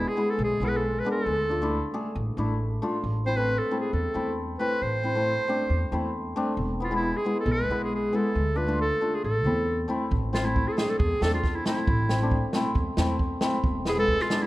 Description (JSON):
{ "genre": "klezmer", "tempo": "136 BPM", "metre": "4/4", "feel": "straight", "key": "A harmonic minor", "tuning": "A4 = 440 Hz", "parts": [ { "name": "clear clarinet", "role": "melody", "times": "0.0-14.5 s", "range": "E4 to C5", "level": "-27 LUFS", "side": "right 1 dB", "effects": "none" }, { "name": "hammered dulcimer", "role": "accompaniment", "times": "0.0-14.5 s", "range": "G#3 to G#4", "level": "-28 LUFS", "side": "left 1 dB", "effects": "none" }, { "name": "upright bass", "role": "bass", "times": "0.0-14.2 s", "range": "E1 to E2", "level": "-29 LUFS", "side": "equal", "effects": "none" }, { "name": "open jazz drum kit", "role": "drums", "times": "10.1-14.4 s", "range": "kick drum, snare drum", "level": "-28 LUFS", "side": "right 1 dB", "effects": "none" } ], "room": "moderate recital hall reverb, RT60 1.7 s", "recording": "dark, warm production", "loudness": "-24 LUFS", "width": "side -17 dB against mid", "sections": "0.0-10.1 A section; 10.1-14.5 A section", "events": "none", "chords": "0.0 E; 1.3 D5; 3.0 Am; 6.6 E; 8.4 Dm; 9.2 Am; 13.6 E" }